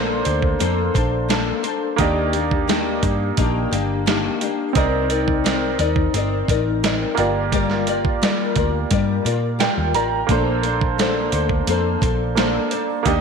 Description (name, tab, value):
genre	indie pop, bedroom pop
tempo	87 BPM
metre	4/4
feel	straight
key	Bb major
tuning	A4 = 443 Hz
part	bright upright piano	accompaniment	0.0-13.2 s	Bb3 to Bb5	-23 LUFS	right 9 dB	cassette tape
part	nylon-string guitar	accompaniment	0.0-13.2 s	Eb3 to D5	-22 LUFS	left 11 dB	ensemble chorus, vibrato effect
part	vintage muted picked electric bass	bass	0.0-13.2 s	G1 to Bb2	-24 LUFS	equal	none
part	dusty soul sampler-style drum kit	drums	0.3-13.2 s	hi-hat, kick drum, snare drum	-23 LUFS	right 3 dB	none
room	moderate echo chamber reverb, RT60 1.9 s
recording	1960s-style stereo with parts hard left and right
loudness	-17 LUFS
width	side -6 dB against mid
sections	0.0-13.2 A section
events	upright piano fill 9.3-10.3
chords	0.0 Bbmaj9; 2.0 Ebmaj7; 4.8 Cm9; 7.2 Gm7; 10.3 Bbmaj9